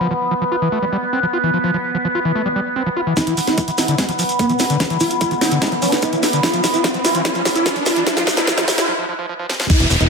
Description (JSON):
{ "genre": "psychedelic trance", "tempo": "147 BPM", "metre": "4/4", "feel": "straight", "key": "unclear", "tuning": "A4 = 440 Hz", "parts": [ { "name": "overtone-sweeping drone", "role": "sustained chords", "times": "0.0-10.1 s", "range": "B3 to B4", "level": "-21 LUFS", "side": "right 1 dB", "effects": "chorus, built-in reverb, phaser, vintage 12-bit sampler grit, sidechain pumping" }, { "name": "screaming distorted acid line", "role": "riff", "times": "0.0-9.9 s", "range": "D3 to F4", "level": "-23 LUFS", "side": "left 1 dB", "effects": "distortion, chorus, auto-pan, sidechain pumping, digital delay" }, { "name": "swarming rave lead", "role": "melody", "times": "3.2-10.1 s", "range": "B3 to F4", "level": "-21 LUFS", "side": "equal", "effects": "chorus, phaser, sidechain pumping, digital delay" }, { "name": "electronic kick drum", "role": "drums", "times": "3.2-9.8 s", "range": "none", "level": "-19 LUFS", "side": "equal", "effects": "overdrive, high-pass filter on kick" }, { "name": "techno drum kit", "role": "drums", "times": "3.2-10.1 s", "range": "crash cymbal, hi-hat, snare drum", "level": "-20 LUFS", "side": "equal", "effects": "low-pass filter on hats, low-pass filter on snare, low-pass filter on cymbals, low-pass filter on room" }, { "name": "shekere", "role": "percussion", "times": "3.2-10.1 s", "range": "none", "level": "-28 LUFS", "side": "left 1 dB", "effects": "none" }, { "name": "riser and downlifter", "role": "sound effects", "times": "4.2-10.1 s", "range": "none", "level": "-24 LUFS", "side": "equal", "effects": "none" }, { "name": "fat analog bass", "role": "bass", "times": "9.8-10.1 s", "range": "E1", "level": "-16 LUFS", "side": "equal", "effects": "none" } ], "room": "moderate digital room reverb, RT60 1.1 s", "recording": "high-pass filter", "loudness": "-15 LUFS", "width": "side -4 dB against mid", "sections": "0.0-3.2 A section; 3.2-9.7 B section", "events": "build-up 3.2-9.7; drum fill 3.2-8.9, 9.5; filter sweep on acid bass 3.2-9.7; filter sweep on digital synth lead 3.2-9.7; riser 4.2-8.9; break 8.9-9.7", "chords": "0.0 F5; 3.2 E5", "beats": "0.31 0.72 1.13 | 1.54 1.94 2.35 2.76 | 3.17 3.58 3.98 4.39 | 4.80 5.21 5.62 6.03 | 6.43 6.84 7.25 7.66 | 8.07 8.47 8.88 9.29 | 9.70" }